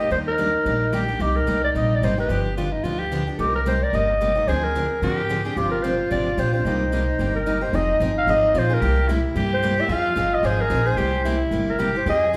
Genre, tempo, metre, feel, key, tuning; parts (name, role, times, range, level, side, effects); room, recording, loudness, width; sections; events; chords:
acoustic string swing (jazz manouche); 221 BPM; 4/4; swing 56% on 8ths; C minor, F minor from 7.7 s; A4 = 440 Hz
growling clarinet; melody; 0.0-12.3 s; G4 to F5; -25 LUFS; equal
growling soprano saxophone; second line; 0.0-12.4 s; Eb4 to Bb4; -29 LUFS; equal
picked steel-string acoustic guitar; accompaniment; 0.0-12.4 s; C3 to Ab4; -30 LUFS; equal
upright bass; bass; 0.1-12.4 s; F1 to Ab2; -27 LUFS; equal
wet large studio reverb, RT60 1.4 s; band playing live in one room; -22 LUFS; mono
0.0-7.7 A section; 7.7-12.4 B section
0.1 Ebmaj7; 1.2 Cm7; 2.3 G7; 3.4 Cm7; 4.5 Dm7b5; 5.6 G7sus4; 6.7 Cm7; 7.7 Fm7; 8.8 C7; 9.9 Fm7; 11.0 C7